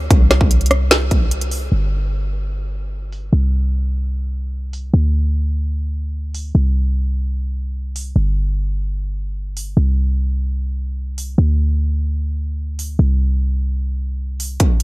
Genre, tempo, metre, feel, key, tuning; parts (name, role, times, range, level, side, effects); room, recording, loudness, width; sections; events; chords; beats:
future bass; 149 BPM; 4/4; half-time; A4 = 440 Hz
warm 808-style bass; bass; 0.0-14.6 s; G1 to D2; -17 LUFS; equal; sidechain pumping
electronic kick drum; drums; 0.1-1.2, 14.6-14.7 s; -13 LUFS; equal
trap drum kit; drums; 0.1-14.8 s; hi-hat, rim click, snare drum; -19 LUFS; equal; high-pass filter on snare, low-pass filter on snare, high-pass filter on hats, low-pass filter on hats
little or no reverb; dark, warm production; -17 LUFS; side -22 dB against mid
0.0-1.7 A section; 1.7-14.6 B section
drop 0.0-1.7; break 1.3-1.7; filter sweep on drum 1.7-14.6
| 0.10 0.51 0.91 1.31 | 1.72 2.12 2.52 2.92 | 3.33 3.73 4.13 4.54 | 4.94 5.34 5.74 6.15 | 6.55 6.95 7.35 7.76 | 8.16 8.56 8.96 9.37 | 9.77 10.17 10.57 10.98 | 11.38 11.78 12.19 12.59 | 12.99 13.39 13.80 14.20 | 14.60